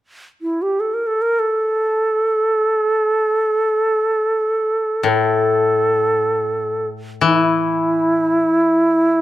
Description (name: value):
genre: japanese traditional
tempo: free time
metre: none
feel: none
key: unclear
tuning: A4 = 440 Hz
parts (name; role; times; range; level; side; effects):
- bright reedy long shakuhachi; melody; 0.4-9.2 s; E4 to Bb4; -16 LUFS; right 1 dB; none
- koto; accompaniment; 5.0-9.2 s; A2 to E3; -20 LUFS; left 6 dB; none
room: light reverb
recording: close, detailed microphones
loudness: -15 LUFS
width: side -14 dB against mid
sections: 0.0-9.2 A section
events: none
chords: none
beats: free time